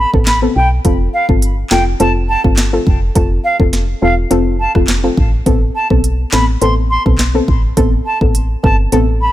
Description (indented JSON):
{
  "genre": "dancehall",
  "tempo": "104 BPM",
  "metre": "4/4",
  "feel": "straight",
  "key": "A minor",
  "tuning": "A4 = 440 Hz",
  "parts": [
    { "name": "reedy silver concert flute", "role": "melody", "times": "0.0-9.3 s", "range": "F5 to C6", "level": "-18 LUFS", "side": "right 1 dB", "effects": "ping-pong delay" },
    { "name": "woody FM bass", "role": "bass", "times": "0.0-9.3 s", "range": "E1 to B1", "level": "-15 LUFS", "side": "equal", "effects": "none" },
    { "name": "soft round pluck", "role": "accompaniment", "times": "0.1-9.1 s", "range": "B3 to A4", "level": "-17 LUFS", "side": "left 2 dB", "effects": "chorus" },
    { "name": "afro-pop drum kit", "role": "drums", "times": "0.1-9.1 s", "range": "handclaps, hi-hat, kick drum, rim click, snare drum", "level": "-15 LUFS", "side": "equal", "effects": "none" }
  ],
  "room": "little or no reverb",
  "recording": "none",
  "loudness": "-11 LUFS",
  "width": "side -14 dB against mid",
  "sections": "0.0-9.3 A section",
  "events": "none",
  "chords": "0.0 Amadd9; 0.8 F; 5.5 Amadd9"
}